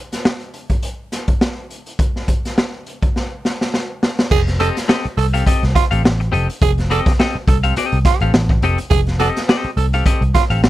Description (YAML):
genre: funk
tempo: 104 BPM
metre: 4/4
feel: swing 56% on 16ths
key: F mixolydian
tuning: A4 = 440 Hz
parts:
  - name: raw garage drum kit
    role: drums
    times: 0.1-10.7 s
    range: crash cymbal, hi-hat, kick drum, snare drum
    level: -17 LUFS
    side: equal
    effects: none
  - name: growling tenor saxophone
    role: second line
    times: 4.3-10.4 s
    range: F4 to A4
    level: -20 LUFS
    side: right 10 dB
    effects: none
  - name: vintage muted picked electric bass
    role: bass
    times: 4.3-10.7 s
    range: F1 to C2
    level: -17 LUFS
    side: equal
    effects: none
  - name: clean electric guitar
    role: accompaniment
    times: 4.6-10.7 s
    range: C4 to F5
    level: -21 LUFS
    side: left 4 dB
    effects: wide subtle chorus
room: small room reverb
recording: none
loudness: -15 LUFS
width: side -15 dB against mid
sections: 0.0-4.3 A section; 4.3-10.7 B section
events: drum fill 3.2-4.3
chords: 0.0 N.C.; 4.3 F9